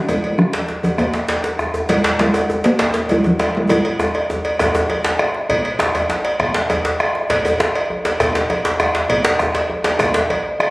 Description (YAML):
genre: west african traditional, West African drum ensemble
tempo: 133 BPM (dotted quarters)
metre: 12/8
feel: straight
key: unclear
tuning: A4 = 439 Hz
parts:
  - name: talking drum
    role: melody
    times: 0.1-5.2 s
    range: F3 to Bb3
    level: -18 LUFS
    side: equal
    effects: none
  - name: bombo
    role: percussion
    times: 0.1-10.7 s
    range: none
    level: -22 LUFS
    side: equal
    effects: none
  - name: cowbell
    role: percussion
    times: 0.1-10.7 s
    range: none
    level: -21 LUFS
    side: equal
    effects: none
  - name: djembe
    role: percussion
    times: 0.1-10.7 s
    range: none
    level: -29 LUFS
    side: left 1 dB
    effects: none
  - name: djembe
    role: percussion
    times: 0.1-10.3 s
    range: none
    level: -20 LUFS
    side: equal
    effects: none
room: moderate recital hall reverb, RT60 1.5 s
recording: recorded on a phone in the room, studio reverb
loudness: -15 LUFS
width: side -22 dB against mid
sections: 0.0-5.5 A section; 5.5-10.7 B section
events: drum fill 3.7-5.5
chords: none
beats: | 0.09 0.54 0.99 1.44 | 1.89 2.34 2.79 3.25 | 3.70 4.15 4.60 5.05 | 5.50 5.95 6.40 6.85 | 7.30 7.75 8.20 8.65 | 9.10 9.55 10.00 10.45